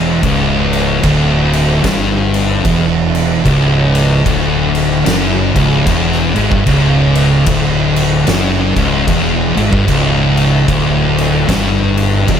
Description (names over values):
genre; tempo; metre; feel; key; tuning
stoner and doom metal; 75 BPM; 4/4; swing 61% on 8ths; unclear; A4 = 441 Hz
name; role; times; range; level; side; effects
thick fuzz guitar; riff; 0.0-12.4 s; C#2 to G#2; -14 LUFS; left 6 dB; distortion
thick fuzz guitar; riff; 0.0-12.4 s; C#2 to G#2; -16 LUFS; right 9 dB; distortion
fuzz fingered electric bass; bass; 0.0-12.4 s; C#1 to G#1; -18 LUFS; equal; overdrive
oversized low-tuned drum kit; drums; 0.2-12.4 s; crash cymbal, kick drum, snare drum; -17 LUFS; equal; none
room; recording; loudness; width
light reverb, small room ambience; none; -10 LUFS; side -8 dB against mid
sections
0.0-12.4 A section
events
none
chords
0.0 C#m